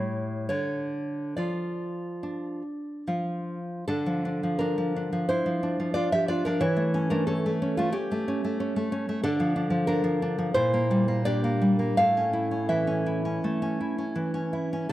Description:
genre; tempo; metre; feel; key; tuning
romantic piece for solo classical guitar; 69-94 BPM; 4/4; rubato; D minor; A4 = 440 Hz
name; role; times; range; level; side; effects
nylon-string guitar; solo; 0.0-14.9 s; A2 to F5; -25 LUFS; equal; none
room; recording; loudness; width
moderate recital hall reverb, RT60 1.6 s; dark, warm production; -25 LUFS; side -14 dB against mid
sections
0.0-3.9 A section; 3.9-14.9 A section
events
none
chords
0.5 Dm; 6.6 A7/E; 9.2 Dm; 10.5 Gm/Bb; 12.0 A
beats
| 0.50 1.36 2.22 3.06 | 3.87 4.59 5.28 5.95 | 6.61 7.28 7.95 8.60 | 9.24 9.88 10.54 11.25 | 11.96 12.68 13.41 14.15 | 14.89

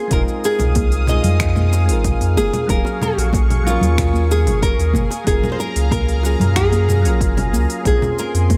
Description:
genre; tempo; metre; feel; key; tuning
sunset chillout; 93 BPM; 4/4; straight; unclear; A4 = 441 Hz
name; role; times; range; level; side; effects
nylon-string guitar; melody; 0.0-8.6 s; F4 to Eb5; -25 LUFS; equal; delay
soft electric-piano-like synth keys; accompaniment; 0.0-8.6 s; Gb3 to F5; -27 LUFS; equal; chorus, delay
lush unison pad; sustained chords; 0.0-8.6 s; Ab4 to Eb6; -30 LUFS; equal; chorus, phaser
warm sub bass; bass; 0.1-8.6 s; Eb1 to Gb2; -19 LUFS; equal; none
deep house drum kit; drums; 0.1-8.6 s; congas, finger snaps, hi-hat, shaker; -27 LUFS; equal; none
electronic kick drum; drums; 0.1-8.6 s; none; -22 LUFS; equal; none
bongos and congas; percussion; 0.6-8.6 s; none; -27 LUFS; equal; none
room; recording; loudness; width
light reverb; none; -17 LUFS; mono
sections
0.0-8.6 A section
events
none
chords
0.1 Fm7; 2.7 Ebm11; 4.9 Gbmaj9; 7.9 Bbm9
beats
| 0.11 0.76 1.40 2.05 | 2.69 3.34 3.98 4.63 | 5.27 5.92 6.56 7.21 | 7.85 8.50

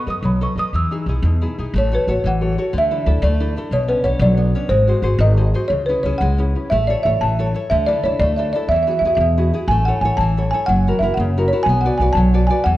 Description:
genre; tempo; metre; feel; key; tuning
italian folk, Italian serenade; 121 BPM (dotted quarters); 6/8; straight; A major; A4 = 441 Hz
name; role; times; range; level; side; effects
folk marimba with soft mallets; melody; 0.0-12.8 s; B4 to E6; -19 LUFS; right 1 dB; tape echo
nylon-string guitar; accompaniment; 0.0-12.8 s; B2 to D#5; -22 LUFS; left 1 dB; none
upright bass; bass; 0.1-12.8 s; F#1 to F#2; -18 LUFS; equal; none
room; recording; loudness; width
moderate recital hall reverb, RT60 1.5 s; worn, warbling old tape, cassette tape, warbly pitch drift; -15 LUFS; side -15 dB against mid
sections
0.0-1.8 A section; 1.8-12.8 B section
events
none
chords
0.0 B7; 0.7 Emaj7; 1.8 A6; 2.7 Dsus2; 3.7 Bmadd9; 4.7 G#7; 5.7 C#m; 6.7 A; 7.7 Dsus2; 8.7 Eadd9; 9.7 A; 10.7 F#7; 11.7 Bm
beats
0.24 | 0.74 1.25 | 1.75 2.25 | 2.74 3.23 | 3.73 4.22 | 4.71 5.21 | 5.71 6.21 | 6.71 7.21 | 7.71 8.20 | 8.69 9.19 | 9.69 10.19 | 10.68 11.18 | 11.67 12.16 | 12.66

